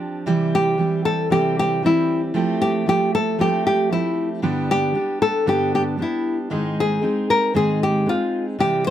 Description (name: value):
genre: pop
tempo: 115 BPM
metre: 4/4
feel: straight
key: C major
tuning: A4 = 440 Hz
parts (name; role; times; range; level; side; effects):
- fingerpicked steel-string acoustic guitar; accompaniment; 0.0-8.9 s; G2 to Ab4; -22 LUFS; right 2 dB; none
- nylon-string guitar; melody; 0.5-8.9 s; E4 to C5; -20 LUFS; left 2 dB; none
room: light reverb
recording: none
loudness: -18 LUFS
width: side -11 dB against mid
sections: 0.3-8.9 A section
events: none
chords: 0.3 C; 2.4 Fadd9; 4.4 G; 6.5 Ab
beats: | 0.27 0.79 1.31 1.83 | 2.35 2.87 3.39 3.91 | 4.43 4.95 5.47 5.99 | 6.51 7.03 7.55 8.07 | 8.59